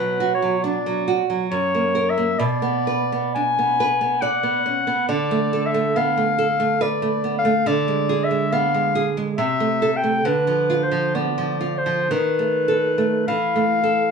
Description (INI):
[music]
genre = romantic duo for clarinet and classical guitar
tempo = 50-71 BPM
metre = 3/4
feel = rubato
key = unclear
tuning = A4 = 440 Hz
[part]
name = warm clarinet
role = melody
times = 0.0-14.1 s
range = B4 to G#5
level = -21 LUFS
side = left 3 dB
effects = none
[part]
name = nylon-string guitar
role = accompaniment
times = 0.0-14.1 s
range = F#2 to D5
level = -21 LUFS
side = right 4 dB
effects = none
[sound]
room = light reverb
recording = studio ambience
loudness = -18 LUFS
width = side -5 dB against mid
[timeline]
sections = 0.0-14.1 A section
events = none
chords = 0.0 Bm; 1.5 F#; 2.4 Bm; 5.1 Bm7b5/D; 7.7 Ddim7; 9.4 Am/C; 10.3 Bdim/D; 12.1 B7/D#; 13.3 A5/E